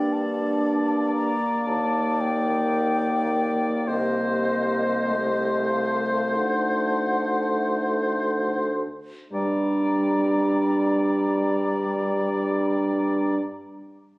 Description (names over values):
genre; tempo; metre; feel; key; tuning
classical, slow romantic movement for wind quintet; 37-60 BPM; 4/4; rubato; G minor; A4 = 440 Hz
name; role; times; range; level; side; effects
mellow hollow concert flute; melody; 0.0-13.4 s; Eb5 to Bb5; -30 LUFS; left 2 dB; none
warm oboe; second line; 0.0-13.4 s; C5 to D5; -28 LUFS; left 1 dB; none
mellow clarinet; accompaniment; 0.0-13.4 s; D4 to G4; -28 LUFS; right 1 dB; none
warm French horn; accompaniment; 0.0-13.4 s; G3 to Bb3; -28 LUFS; equal; none
mellow bassoon; bass; 0.0-13.4 s; C2 to G2; -28 LUFS; equal; none
room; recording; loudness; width
moderate recital hall reverb, RT60 1.6 s; recorded on a phone in the room, club reverb, compression; -21 LUFS; side -20 dB against mid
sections
0.0-9.3 A section; 9.3-14.2 B section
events
slowing down 0.0-9.3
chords
0.0 Gm; 1.7 Ebmaj7; 3.9 Am7b5/C; 6.4 D7b9; 9.3 Gm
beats
0.61 1.67 2.74 | 3.88 5.08 6.36 7.79 | 9.32 10.77 12.22